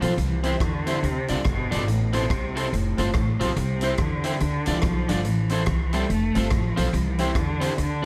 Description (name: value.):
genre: ska.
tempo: 142 BPM.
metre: 4/4.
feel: swing 62% on 8ths.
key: C major.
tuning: A4 = 441 Hz.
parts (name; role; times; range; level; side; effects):
warm cello; melody; 0.0-8.1 s; A2 to A3; -29 LUFS; equal; analog delay.
electric guitar at the edge of break-up; accompaniment; 0.0-8.1 s; C4 to D5; -33 LUFS; equal; subtle chorus.
electric guitar at the edge of break-up; riff; 0.0-7.9 s; F2 to E3; -37 LUFS; equal; none.
bright upright piano; stabs; 0.0-8.1 s; C4 to D5; -35 LUFS; equal; analog delay.
upright bass; bass; 0.0-8.0 s; F1 to E2; -29 LUFS; equal; none.
swinging big-band drum kit; drums; 0.0-7.9 s; hi-hat, kick drum, rim click; -32 LUFS; equal; analog delay.
room: light reverb.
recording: none.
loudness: -24 LUFS.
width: mono.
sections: 0.0-8.1 A section.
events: none.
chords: 0.2 C; 1.0 Dm; 1.9 Am; 2.7 F; 3.6 C; 4.4 Dm; 5.2 Am; 6.1 F; 6.9 C.